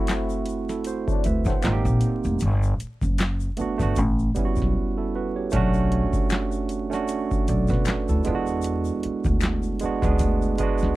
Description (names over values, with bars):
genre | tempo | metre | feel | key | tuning
R&B, neo-soul | 77 BPM | 4/4 | swing 54% on 16ths | B minor | A4 = 439 Hz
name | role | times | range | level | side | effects
barky tine electric piano | accompaniment | 0.0-11.0 s | G3 to F#5 | -26 LUFS | right 4 dB | overdrive
muted trombone section | stabs | 0.0-1.6 s | F#3 to E4 | -35 LUFS | left 10 dB | analog delay
booming analog drum machine | drums | 0.1-10.9 s | handclaps, hi-hat, kick drum, snare drum | -26 LUFS | equal | none
finger snaps and egg shaker | percussion | 0.1-11.0 s | none | -41 LUFS | left 16 dB | none
upright bass | bass | 1.3-11.0 s | E#1 to D3 | -24 LUFS | equal | none
room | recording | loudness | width
little or no reverb | dark, warm production, vinyl crackle | -21 LUFS | side -17 dB against mid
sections
0.0-5.5 A section; 5.5-11.0 A section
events
break 4.8-5.5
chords
0.0 D7; 1.6 G#maj9; 2.4 Gmaj9; 4.0 A13; 5.5 Bm9; 8.3 E9